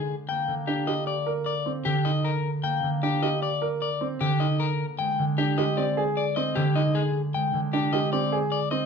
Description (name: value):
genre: classical, minimalist pattern music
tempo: 153 BPM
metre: 6/4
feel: straight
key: Eb major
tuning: A4 = 440 Hz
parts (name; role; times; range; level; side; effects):
- electric guitar at the edge of break-up; melody; 0.0-8.9 s; G4 to G5; -28 LUFS; left 7 dB; none
- concert harp; accompaniment; 0.0-8.9 s; D3 to Bb3; -27 LUFS; right 2 dB; none
- warm grand piano; arpeggios; 0.7-8.9 s; C4 to Bb4; -29 LUFS; right 5 dB; none
room: wet large studio reverb, RT60 0.9 s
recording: none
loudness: -23 LUFS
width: side -6 dB against mid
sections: 0.0-8.9 A section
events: none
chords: 0.1 Eb (rootless); 4.8 Abmaj7